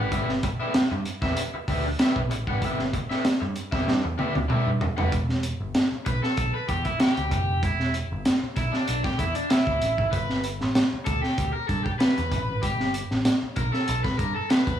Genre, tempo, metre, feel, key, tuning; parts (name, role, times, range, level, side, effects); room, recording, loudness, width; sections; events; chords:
funk; 96 BPM; 4/4; straight; E minor; A4 = 440 Hz
raw garage guitar; accompaniment; 0.0-14.8 s; D4 to F#5; -28 LUFS; equal; overdrive
picked electric bass; bass; 0.0-14.8 s; E1 to G2; -29 LUFS; equal
crunchy breakbeat drum kit; drums; 0.1-14.8 s; hi-hat, kick drum, snare drum, toms; -25 LUFS; equal
light reverb; studio reverb; -22 LUFS; side -10 dB against mid
0.0-5.1 A section; 5.1-14.8 B section
drum fill 3.9-5.1; overdriven electric guitar solo 5.1-14.8
0.1 G6; 5.1 Em7; 10.1 G